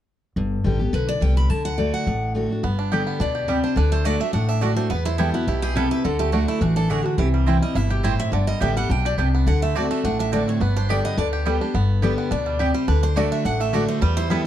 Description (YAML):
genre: bluegrass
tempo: 211 BPM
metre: 4/4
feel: straight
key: G major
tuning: A4 = 441 Hz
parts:
  - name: picked steel-string acoustic guitar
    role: accompaniment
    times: 0.4-14.5 s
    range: E2 to G4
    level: -23 LUFS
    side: left 1 dB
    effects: none
  - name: upright bass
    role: bass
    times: 0.4-14.4 s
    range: G1 to E2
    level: -23 LUFS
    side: equal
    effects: none
  - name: picked steel-string acoustic guitar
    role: melody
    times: 0.9-14.4 s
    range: E4 to B5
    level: -28 LUFS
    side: equal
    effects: none
  - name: bluegrass banjo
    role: arpeggios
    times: 2.6-14.5 s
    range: D3 to G4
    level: -29 LUFS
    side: right 6 dB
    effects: none
  - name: mandolin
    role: stabs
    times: 2.9-14.4 s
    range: A3 to A5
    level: -29 LUFS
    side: right 8 dB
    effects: none
room: light reverb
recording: dark, warm production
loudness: -19 LUFS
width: side -11 dB against mid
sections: 0.4-2.6 A section; 2.6-11.7 B section; 11.7-14.5 B section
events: none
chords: 0.4 G; 1.5 D; 2.6 G; 3.8 D; 4.9 Em; 6.0 D; 7.2 C; 8.3 G; 9.5 D7; 10.6 G; 12.9 D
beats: | 0.37 0.65 0.93 1.22 | 1.50 1.78 2.07 2.35 | 2.63 2.92 3.20 3.48 | 3.77 4.05 4.34 4.62 | 4.91 5.19 5.48 5.76 | 6.04 6.33 6.62 6.90 | 7.18 7.47 7.75 8.04 | 8.33 8.61 8.90 9.18 | 9.47 9.75 10.04 10.32 | 10.61 10.89 11.18 11.46 | 11.75 12.03 12.31 12.60 | 12.88 13.17 13.45 13.73 | 14.02 14.30